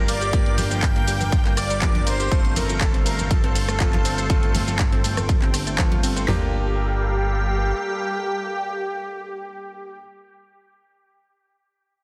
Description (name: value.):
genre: progressive house.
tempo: 121 BPM.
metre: 4/4.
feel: straight.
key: G minor.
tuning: A4 = 441 Hz.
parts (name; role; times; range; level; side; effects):
soft supersaw; melody; 0.0-10.0 s; G4 to G5; -32 LUFS; equal; sidechain pumping, dub echo.
airy dreamy lead; second line; 0.0-10.0 s; G5 to G6; -36 LUFS; equal; chorus, sidechain pumping, dub echo.
filtered supersaw swell; sustained chords; 0.0-10.0 s; G3 to D6; -35 LUFS; equal; sidechain pumping.
bright baby grand piano; stabs; 0.0-10.0 s; A3 to A4; -34 LUFS; equal; sidechain pumping, dub echo.
fat analog bass; bass; 0.0-7.7 s; G1; -28 LUFS; equal; sidechain pumping.
analog pluck; arpeggios; 0.1-6.5 s; F3 to C6; -34 LUFS; equal; chorus, cassette tape, sidechain pumping, dub echo.
pop drum kit; drums; 0.1-6.3 s; handclaps, hi-hat, ride cymbal, rim click, shaker; -31 LUFS; equal; small room ambience.
big-room dance drum kit; drums; 0.3-6.4 s; kick drum, snare drum, toms; -23 LUFS; equal; overdrive, small room ambience.
congas and cowbell; percussion; 0.6-6.3 s; none; -35 LUFS; equal; none.
room: light reverb, digital ambience.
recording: dense, heavily limited modern master.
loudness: -22 LUFS.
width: mono.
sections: 0.0-6.3 A section; 6.3-10.2 B section.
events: drop 0.0-6.3.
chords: 0.0 Gm7; 2.3 F/G; 6.3 Gm7.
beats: | 0.33 0.83 1.32 1.82 | 2.31 2.81 3.31 3.80 | 4.30 4.79 5.29 5.79 | 6.28 6.78 7.27 7.77 | 8.27 8.76 9.26 9.75.